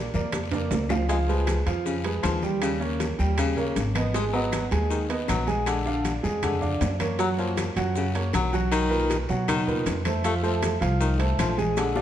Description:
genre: latin, salsa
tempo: 157 BPM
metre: 4/4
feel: straight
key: unclear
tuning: A4 = 440 Hz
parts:
  - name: warm baby grand piano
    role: accompaniment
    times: 0.0-12.0 s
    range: A#2 to Ab5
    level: -28 LUFS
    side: right 3 dB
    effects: none
  - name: upright bass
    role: bass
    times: 0.0-12.0 s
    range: Ab1 to B2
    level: -28 LUFS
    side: equal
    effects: none
  - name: bongos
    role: percussion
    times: 0.1-12.0 s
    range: none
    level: -36 LUFS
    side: left 5 dB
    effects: none
  - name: congas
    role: percussion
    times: 0.1-12.0 s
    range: none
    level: -35 LUFS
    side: left 2 dB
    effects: none
  - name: guiro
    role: percussion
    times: 0.1-12.0 s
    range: none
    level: -40 LUFS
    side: left 5 dB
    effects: none
  - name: maracas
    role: percussion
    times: 0.1-12.0 s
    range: none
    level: -45 LUFS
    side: right 7 dB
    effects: none
  - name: claves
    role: percussion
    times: 0.3-12.0 s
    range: none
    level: -42 LUFS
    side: left 9 dB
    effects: none
  - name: timbales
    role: percussion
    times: 0.3-12.0 s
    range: none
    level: -35 LUFS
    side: right 5 dB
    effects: none
  - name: clear baritone saxophone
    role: second line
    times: 1.1-12.0 s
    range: Db3 to A3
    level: -29 LUFS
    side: left 5 dB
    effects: none
room: wet large studio reverb, RT60 1.3 s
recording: dark, warm production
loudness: -23 LUFS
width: side -11 dB against mid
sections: 0.0-1.1 A section; 1.1-12.0 B section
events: drum fill 0.0-1.1, 11.8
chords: 0.0 Bb; 1.1 Db7; 2.6 Eb7; 4.1 Abm7; 5.7 Bb7; 7.2 Gbmaj7; 8.7 Bmaj7; 10.2 F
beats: 0.33 0.71 | 1.09 1.47 1.86 2.24 | 2.62 3.00 3.38 3.76 | 4.14 4.53 4.91 5.29 | 5.67 6.05 6.43 6.82 | 7.20 7.58 7.96 8.34 | 8.72 9.10 9.48 9.87 | 10.25 10.63 11.01 11.39 | 11.77

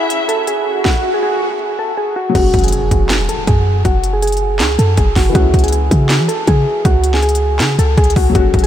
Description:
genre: hip hop, trap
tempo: 160 BPM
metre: 4/4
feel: half-time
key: F# minor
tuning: A4 = 441 Hz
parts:
  - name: soft electric-piano-like synth keys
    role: melody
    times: 0.0-8.7 s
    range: F#4 to A4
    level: -17 LUFS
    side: right 1 dB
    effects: chorus, low-pass filter, ping-pong delay
  - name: muted studio string section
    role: sustained chords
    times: 0.0-0.8 s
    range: C#4 to E5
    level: -23 LUFS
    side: left 2 dB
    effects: none
  - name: swell and impact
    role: sound effects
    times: 0.2-3.9 s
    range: none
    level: -24 LUFS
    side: equal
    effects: none
  - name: trap drum kit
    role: drums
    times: 0.1-8.7 s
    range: crash cymbal, handclaps, hi-hat, kick drum, snare drum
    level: -17 LUFS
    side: equal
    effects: none
  - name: dark baby grand piano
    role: accompaniment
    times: 2.3-8.7 s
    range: E3 to F#4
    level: -23 LUFS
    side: left 6 dB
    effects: low-pass filter
  - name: clean 808-style bass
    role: bass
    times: 2.4-8.7 s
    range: E1 to E3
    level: -14 LUFS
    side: equal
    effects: none
room: moderate huge ambient reverb, RT60 8.3 s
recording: dreamy mix soaked in reverb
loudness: -12 LUFS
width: side -11 dB against mid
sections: 0.0-2.4 A section; 2.4-8.7 B section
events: swell 0.2-2.4; impact 2.4-3.9; filter sweep 2.4-8.3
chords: 0.0 C#m; 2.4 F#sus2; 5.3 C#m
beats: 0.10 0.47 | 0.85 1.23 1.60 1.98 | 2.35 2.73 3.10 3.48 | 3.85 4.22 4.60 4.97 | 5.35 5.72 6.10 6.47 | 6.85 7.22 7.60 7.97 | 8.35

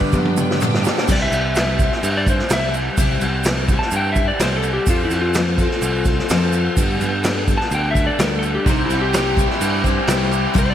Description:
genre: folk rock and heartland rock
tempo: 127 BPM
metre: 4/4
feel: straight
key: C major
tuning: A4 = 440 Hz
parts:
  - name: electric slide guitar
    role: melody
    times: 0.0-10.7 s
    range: Eb4 to A5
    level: -24 LUFS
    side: left 1 dB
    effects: digital delay
  - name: picked twelve-string acoustic guitar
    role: accompaniment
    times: 0.0-10.7 s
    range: G2 to A4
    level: -24 LUFS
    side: left 5 dB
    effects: slapback echo
  - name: tonewheel organ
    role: sustained chords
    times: 0.0-10.7 s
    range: B3 to C5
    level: -32 LUFS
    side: right 1 dB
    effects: none
  - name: overdriven electric guitar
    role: riff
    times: 0.0-1.1, 8.7-10.7 s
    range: G2 to G4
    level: -23 LUFS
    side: right 1 dB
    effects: slapback echo
  - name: vintage drum kit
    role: drums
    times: 0.0-10.7 s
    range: crash cymbal, kick drum, snare drum, toms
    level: -19 LUFS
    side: equal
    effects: none
  - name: fingered electric bass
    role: bass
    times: 0.1-10.7 s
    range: C2 to G2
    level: -23 LUFS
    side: right 1 dB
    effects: none
  - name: tube shaker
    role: percussion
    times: 0.1-10.7 s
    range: none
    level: -34 LUFS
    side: right 12 dB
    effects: none
room: light reverb, small room reverb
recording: none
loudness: -16 LUFS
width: side -10 dB against mid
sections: 0.0-1.1 A section; 1.1-10.7 B section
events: drum fill 0.1-1.1; electric slide guitar solo 1.1-10.7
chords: 0.0 G; 1.1 C; 4.9 F; 6.8 Gadd9; 8.7 C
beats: 0.14 0.61 | 1.09 1.56 2.04 2.51 | 2.98 3.46 3.93 4.40 | 4.88 5.35 5.82 6.29 | 6.77 7.24 7.72 8.19 | 8.66 9.14 9.61 10.09 | 10.56

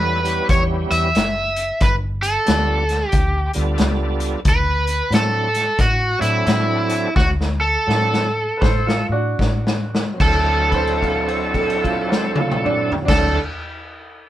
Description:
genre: electric blues shuffle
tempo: 73-91 BPM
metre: 4/4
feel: swing 63% on 8ths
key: D mixolydian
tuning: A4 = 437 Hz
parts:
  - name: overdriven slide guitar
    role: melody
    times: 0.0-13.4 s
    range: E4 to E5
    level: -20 LUFS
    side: right 1 dB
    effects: none
  - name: bright tonewheel organ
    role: accompaniment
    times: 0.0-13.4 s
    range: F#3 to A4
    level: -25 LUFS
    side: right 2 dB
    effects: slow rotary speaker, overdrive, chorus vibrato
  - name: vintage muted fingered electric bass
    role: bass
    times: 0.0-13.4 s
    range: F#1 to A2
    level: -22 LUFS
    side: equal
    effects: none
  - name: vintage drum kit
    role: drums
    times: 0.3-13.3 s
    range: crash cymbal, hi-hat, kick drum, snare drum, toms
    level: -21 LUFS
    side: left 1 dB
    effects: none
  - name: clear upright piano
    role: second line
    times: 8.6-13.4 s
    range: D4 to F5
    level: -24 LUFS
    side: right 2 dB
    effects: none
room: light reverb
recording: band playing live in one room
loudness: -16 LUFS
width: side -13 dB against mid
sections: 0.0-10.2 A section; 10.2-13.5 B section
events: slowing down 4.4-10.2; drum fill 7.2-10.2; held note 10.2-13.0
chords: 0.0 A9; 1.8 G9; 4.4 D9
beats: 0.50 1.15 | 1.81 2.47 3.13 3.79 | 4.45 5.11 5.78 6.46 | 7.16 7.87 8.61 9.38 | 10.19 11.01 11.84 12.66

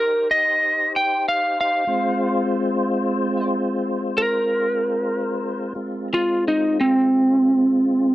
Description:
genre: blues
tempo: 62 BPM (dotted quarters)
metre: 12/8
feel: straight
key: unclear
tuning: A4 = 440 Hz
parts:
  - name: lightly driven lead guitar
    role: melody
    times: 0.0-8.1 s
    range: C4 to G5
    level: -19 LUFS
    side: right 1 dB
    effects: none
  - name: tonewheel organ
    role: sustained chords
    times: 0.0-8.1 s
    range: Ab3 to C5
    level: -24 LUFS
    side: left 1 dB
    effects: slow rotary speaker, chorus vibrato
room: light reverb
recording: dry, close 1970s-style studio recording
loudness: -18 LUFS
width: side -15 dB against mid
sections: 0.0-8.1 A section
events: lead electric guitar solo 0.0-8.1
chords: 0.0 Cm; 1.9 Fm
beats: 0.91 | 1.88 2.86 3.83 4.80 | 5.78 6.75 7.72

